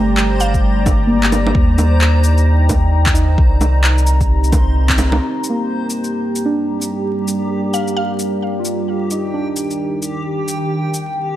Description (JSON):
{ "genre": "future garage", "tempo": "131 BPM", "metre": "4/4", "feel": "swing 61% on 16ths", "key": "G minor", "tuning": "A4 = 441 Hz", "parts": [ { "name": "muted felt-like synth keys", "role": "accompaniment", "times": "0.0-10.9 s", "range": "A3 to F4", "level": "-22 LUFS", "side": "equal", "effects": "chorus, sidechain pumping, tape echo" }, { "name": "deep dark ambient pad", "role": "sustained chords", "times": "0.0-11.4 s", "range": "Eb3 to Bb5", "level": "-21 LUFS", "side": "equal", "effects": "chorus, built-in reverb, sidechain pumping" }, { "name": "warm sub bass", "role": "bass", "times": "0.0-5.2 s", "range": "G1 to Eb2", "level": "-14 LUFS", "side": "equal", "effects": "sidechain pumping" }, { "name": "backwards swelling texture", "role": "texture", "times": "0.0-11.4 s", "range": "G4 to C5", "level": "-29 LUFS", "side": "left 1 dB", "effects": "built-in reverb" }, { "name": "electronic handclaps, shaker and bongos", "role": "drums", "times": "0.2-11.1 s", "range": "none", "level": "-20 LUFS", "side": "equal", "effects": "overdrive" }, { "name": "mallet-like synth pluck", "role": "melody", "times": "0.4-0.6, 7.7-8.3 s", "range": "F5", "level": "-24 LUFS", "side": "right 1 dB", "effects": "analog chorus, tape echo" }, { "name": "electronic kick drum", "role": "drums", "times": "0.5-5.0 s", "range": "none", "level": "-16 LUFS", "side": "equal", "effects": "overdrive" } ], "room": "light reverb, digital ambience", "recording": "vinyl crackle", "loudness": "-14 LUFS", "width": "side -13 dB against mid", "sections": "0.0-5.2 A section; 5.2-11.4 B section", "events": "band accent 4.9", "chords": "0.0 Gm; 1.6 Ebmaj7; 3.4 Cm7; 5.2 Gm; 8.9 Ebmaj7; 10.7 Cm7" }